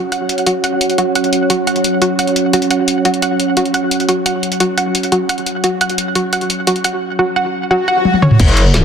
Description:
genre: dark technical drum and bass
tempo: 174 BPM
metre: 4/4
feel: straight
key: unclear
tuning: A4 = 439 Hz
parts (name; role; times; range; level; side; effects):
- deep dark ambient pad; sustained chords; 0.0-8.8 s; F#4 to F#5; -18 LUFS; right 2 dB; chorus, built-in reverb, sidechain pumping
- analog pluck; arpeggios; 0.1-8.3 s; F#4 to F#5; -17 LUFS; right 1 dB; chorus, sidechain pumping, digital delay
- drum and bass drum kit; drums; 0.1-8.8 s; crash cymbal, hi-hat, snare drum, toms; -16 LUFS; left 1 dB; none
- swell; sound effects; 7.8-8.4 s; none; -18 LUFS; left 2 dB; none
- metallic wobble bass; bass; 8.4-8.8 s; F#1; -10 LUFS; equal; chorus, tube saturation, sidechain pumping
- electronic kick drum; drums; 8.4-8.5 s; none; -12 LUFS; equal; none
room: wet lush hall reverb, RT60 2.0 s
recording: dense, heavily limited modern master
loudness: -12 LUFS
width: side -7 dB against mid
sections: 0.0-8.4 A section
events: filter sweep on ambient pad 0.0-8.4; swell 7.8-8.4; drum fill 8.1-8.4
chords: 0.0 F#5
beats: | 0.12 0.47 0.81 1.16 | 1.50 1.84 2.19 2.53 | 2.88 3.22 3.57 3.91 | 4.26 4.60 4.95 5.29 | 5.64 5.98 6.33 6.67 | 7.02 7.36 7.71 8.05 | 8.40 8.74

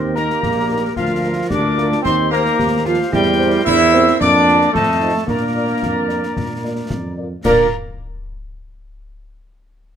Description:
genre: military-style march for wind band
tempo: 111 BPM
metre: 2/4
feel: straight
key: Bb major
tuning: A4 = 441 Hz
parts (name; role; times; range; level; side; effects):
- mellow euphonium; second line; 0.0-7.1 s; Bb3 to G4; -24 LUFS; right 4 dB; none
- warm woodwind section; second line; 0.0-7.7 s; F4 to Eb5; -27 LUFS; left 1 dB; none
- clear trombone section; sustained chords; 0.0-7.7 s; F3 to E4; -18 LUFS; right 2 dB; none
- mellow tuba; bass; 0.0-7.7 s; Bb1 to Bb2; -22 LUFS; right 1 dB; none
- clear trumpet section; melody; 0.2-7.7 s; F4 to E5; -25 LUFS; left 2 dB; none
- mellow piccolo; second line; 0.2-7.8 s; F5 to E6; -22 LUFS; left 5 dB; none
- mellow French horn section; accompaniment; 0.2-7.7 s; D4 to Eb5; -21 LUFS; equal; none
- concert snare drum, concert bass drum and clash cymbals; drums; 0.2-7.7 s; none; -27 LUFS; left 2 dB; none
room: light reverb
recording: close, detailed microphones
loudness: -14 LUFS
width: side -8 dB against mid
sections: 0.0-7.4 A section; 7.4-8.5 B section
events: none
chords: 0.0 Eb; 1.0 Bb/D; 2.0 Cm7/Eb; 3.1 C7/E; 4.2 Bb/F; 4.7 F7; 5.3 Bb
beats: 0.43 | 0.97 1.51 | 2.05 2.58 | 3.12 3.66 | 4.20 4.74 | 5.28 5.82 | 6.36 6.90 | 7.44

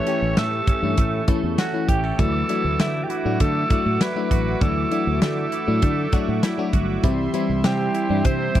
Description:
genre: 1980s-style pop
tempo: 99 BPM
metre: 4/4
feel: straight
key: unclear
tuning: A4 = 441 Hz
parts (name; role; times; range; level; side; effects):
- growling alto saxophone; melody; 0.0-8.6 s; E4 to C#5; -26 LUFS; right 1 dB; slapback echo
- FM electric piano; accompaniment; 0.0-8.6 s; E3 to G4; -25 LUFS; left 6 dB; chorus
- brassy analog pad; sustained chords; 0.0-8.6 s; G3 to D6; -30 LUFS; right 3 dB; chorus
- direct-recorded clean electric guitar; riff; 0.0-8.6 s; E3 to A4; -31 LUFS; right 8 dB; analog chorus, slapback echo
- modern studio drum kit; drums; 0.1-8.6 s; hi-hat, kick drum, snare drum; -21 LUFS; equal; none
- fretless electric bass; bass; 0.2-8.5 s; G1 to D3; -24 LUFS; right 1 dB; analog chorus
room: small room ambience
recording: dry, close 1970s-style studio recording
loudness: -19 LUFS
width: side -12 dB against mid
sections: 0.0-8.6 A section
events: none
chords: 0.0 A; 2.2 Dadd9; 7.0 C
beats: 0.37 0.98 1.58 | 2.19 2.80 3.40 4.01 | 4.61 5.22 5.83 6.43 | 7.04 7.64 8.25

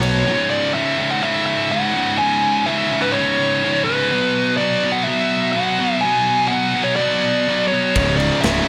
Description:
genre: heavy metal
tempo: 125 BPM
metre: 4/4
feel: straight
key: C# phrygian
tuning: A4 = 443 Hz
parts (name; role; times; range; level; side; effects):
- dark smooth lead guitar; melody; 0.0-8.7 s; B4 to G#5; -22 LUFS; equal; overdrive
- heavy high-gain guitar; riff; 0.0-0.3, 8.0-8.7 s; C#2 to B3; -26 LUFS; equal; distortion
- scooped high-gain guitar; riff; 0.0-8.7 s; C#2 to B3; -21 LUFS; equal; distortion
- fuzz picked electric bass; bass; 0.0-0.2, 8.0-8.6 s; C#1 to B1; -24 LUFS; equal; overdrive
- tight metal drum kit; drums; 0.0-0.1, 8.0-8.6 s; crash cymbal, kick drum, snare drum; -27 LUFS; equal; soft clipping on kick
room: light reverb, small room ambience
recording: blown-out, overdriven recording, overdrive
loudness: -18 LUFS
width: mono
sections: 0.3-8.7 A section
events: none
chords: 0.3 C#5; 4.1 Bm; 8.0 C#5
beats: | 0.26 0.74 1.23 1.71 | 2.19 2.67 3.15 3.63 | 4.11 4.59 5.07 5.55 | 6.04 6.52 7.00 7.48 | 7.96 8.44

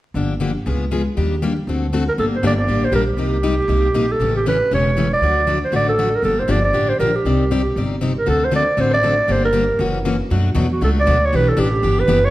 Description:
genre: acoustic string swing (jazz manouche)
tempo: 236 BPM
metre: 4/4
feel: swing 56% on 8ths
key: G minor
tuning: A4 = 440 Hz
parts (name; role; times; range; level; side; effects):
- upright bass; bass; 0.1-12.3 s; E1 to F#2; -20 LUFS; equal; none
- picked plugged-in steel-string acoustic guitar; accompaniment; 0.2-12.2 s; B2 to D5; -21 LUFS; left 2 dB; none
- growling clarinet; melody; 2.1-12.3 s; F#4 to D5; -18 LUFS; right 2 dB; none
room: moderate recital hall reverb, RT60 1.6 s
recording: vinyl crackle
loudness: -15 LUFS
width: side -16 dB against mid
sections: 0.1-2.2 A section; 2.2-10.3 B section; 10.3-12.3 C section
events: none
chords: 0.1 Gm7; 0.7 C#7; 1.2 Ebmaj7; 1.7 D7; 2.2 Gm; 3.2 Cm7; 4.2 A7; 5.2 D; 6.2 Gm7; 7.2 Cmadd9; 8.3 D7; 9.3 Gm; 9.8 F#7; 10.3 Bm7; 11.3 Em7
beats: | 0.14 0.40 0.65 0.91 | 1.16 1.41 1.67 1.92 | 2.17 2.43 2.68 2.93 | 3.19 3.44 3.69 3.95 | 4.20 4.46 4.71 4.96 | 5.22 5.47 5.72 5.98 | 6.23 6.49 6.74 7.00 | 7.25 7.50 7.76 8.01 | 8.27 8.52 8.78 9.03 | 9.29 9.54 9.80 10.05 | 10.30 10.56 10.81 11.07 | 11.32 11.57 11.83 12.08

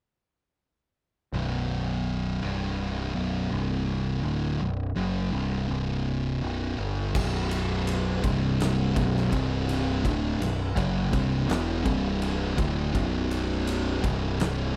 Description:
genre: stoner and doom metal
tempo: 83 BPM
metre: 4/4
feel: straight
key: B phrygian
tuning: A4 = 440 Hz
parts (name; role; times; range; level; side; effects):
- thick fuzz guitar; riff; 1.3-14.7 s; B1 to G3; -29 LUFS; equal; distortion
- growling picked electric bass; bass; 1.3-14.7 s; B0 to G1; -34 LUFS; equal; overdrive
- oversized low-tuned drum kit; drums; 7.1-14.6 s; crash cymbal, kick drum, ride cymbal, snare drum; -33 LUFS; equal; none
room: little or no reverb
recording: none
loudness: -27 LUFS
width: mono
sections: 1.3-7.1 A section; 7.1-14.8 B section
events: none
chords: 1.3 B5; 2.4 C5; 3.2 B5; 3.5 C5; 4.2 Bm; 5.7 C5; 6.4 Bm; 7.1 B5; 8.2 C5; 9.0 B5; 9.3 C5; 10.0 Bm; 11.9 C5; 12.6 Bm; 14.0 C5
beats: | 1.33 2.06 2.79 3.52 | 4.24 4.97 5.69 6.42 | 7.14 7.87 8.59 9.32 | 10.04 10.77 11.49 12.21 | 12.94 13.66 14.39

